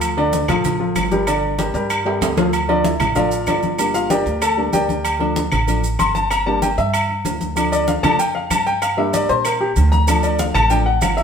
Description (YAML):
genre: latin, salsa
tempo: 191 BPM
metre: 4/4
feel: straight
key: D minor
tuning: A4 = 444 Hz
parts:
  - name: warm baby grand piano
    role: accompaniment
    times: 0.0-11.2 s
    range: D3 to C6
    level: -19 LUFS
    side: left 2 dB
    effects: none
  - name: upright bass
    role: bass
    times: 0.0-11.2 s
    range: G1 to Bb2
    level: -23 LUFS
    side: right 1 dB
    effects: none
  - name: agogo bells and timbales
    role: percussion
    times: 0.0-11.2 s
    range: none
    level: -23 LUFS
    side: right 3 dB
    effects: none
  - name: claves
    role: percussion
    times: 0.0-11.2 s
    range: none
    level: -29 LUFS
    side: left 2 dB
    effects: none
  - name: congas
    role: percussion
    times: 0.0-11.2 s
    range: none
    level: -26 LUFS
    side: left 1 dB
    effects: none
  - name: maracas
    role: percussion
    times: 0.0-11.2 s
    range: none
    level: -30 LUFS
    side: right 4 dB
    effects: none
room: moderate stone room reverb, RT60 1.1 s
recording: band playing live in one room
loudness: -16 LUFS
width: side -7 dB against mid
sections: 0.0-2.5 A section; 2.5-11.2 B section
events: drum fill 2.1-2.5; grand piano solo 2.5-11.2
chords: 0.0 Gm; 2.5 Dm; 3.8 Gm; 5.0 Dm; 6.3 Gm; 7.6 Dm; 8.8 Gm; 10.1 Dm